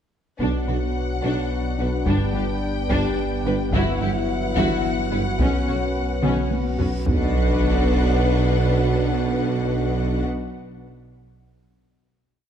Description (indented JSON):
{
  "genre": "cinematic, hybrid orchestral and electronic film score",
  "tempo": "72 BPM (dotted quarters)",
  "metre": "6/8",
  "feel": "straight",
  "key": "B minor",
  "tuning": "A4 = 441 Hz",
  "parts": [
    { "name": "warm symphonic violin section", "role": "melody", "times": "0.4-10.2 s", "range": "F#5 to G5", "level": "-32 LUFS", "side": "left 4 dB", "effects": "none" },
    { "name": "rich symphonic violin section", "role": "second line", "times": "0.4-10.2 s", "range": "C#4 to B4", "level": "-31 LUFS", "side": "left 3 dB", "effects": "none" },
    { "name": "rich symphonic viola section", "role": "accompaniment", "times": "0.4-10.2 s", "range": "C#4 to E4", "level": "-32 LUFS", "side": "left 1 dB", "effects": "none" },
    { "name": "brassy analog pad", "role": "sustained chords", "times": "0.4-10.2 s", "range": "B3 to B4", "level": "-30 LUFS", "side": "left 1 dB", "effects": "chorus" },
    { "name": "mellow French horn section", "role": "sustained chords", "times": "0.4-10.2 s", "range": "B3 to E4", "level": "-30 LUFS", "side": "left 6 dB", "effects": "none" },
    { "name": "warm trombone section", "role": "sustained chords", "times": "0.4-10.2 s", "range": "F#2 to G3", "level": "-32 LUFS", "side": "right 5 dB", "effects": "none" },
    { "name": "tight sequenced synth", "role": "arpeggios", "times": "0.4-7.0 s", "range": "E3 to C#5", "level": "-33 LUFS", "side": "left 3 dB", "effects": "none" },
    { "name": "mellow tuba", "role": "bass", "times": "0.4-10.2 s", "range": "G1 to B1", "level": "-29 LUFS", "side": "right 4 dB", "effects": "none" },
    { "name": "rich symphonic cello section", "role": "bass", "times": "0.4-10.2 s", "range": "G2 to B2", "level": "-28 LUFS", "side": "right 3 dB", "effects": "none" },
    { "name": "rich symphonic double bass section", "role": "bass", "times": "0.4-10.2 s", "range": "G1 to B1", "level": "-30 LUFS", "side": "right 2 dB", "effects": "none" },
    { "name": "sub bass with octave", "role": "bass", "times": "0.4-10.2 s", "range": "G1 to B1", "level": "-28 LUFS", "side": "left 1 dB", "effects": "none" },
    { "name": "taiko ensemble", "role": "drums", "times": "0.4-8.1 s", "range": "none", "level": "-27 LUFS", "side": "equal", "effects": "none" },
    { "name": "reverse cymbal and sub drop", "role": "sound effects", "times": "6.9-8.7 s", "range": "none", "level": "-28 LUFS", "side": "left 1 dB", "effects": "none" }
  ],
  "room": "moderate concert hall reverb, RT60 2.2 s",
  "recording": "dark, warm production",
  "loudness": "-19 LUFS",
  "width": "side -9 dB against mid",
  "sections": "0.4-7.1 theme; 7.1-10.4 final chord",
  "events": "drum fill 6.2-7.1; reverse cymbal 6.9; impact 7.1-8.7",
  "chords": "0.4 Bm; 2.1 G; 3.7 Emadd9/G; 5.4 Bsus2; 7.1 Bm",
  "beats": "| 0.40 1.24 | 2.07 2.90 | 3.73 4.57 | 5.40 6.24 | 7.07 7.90 | 8.73 9.57"
}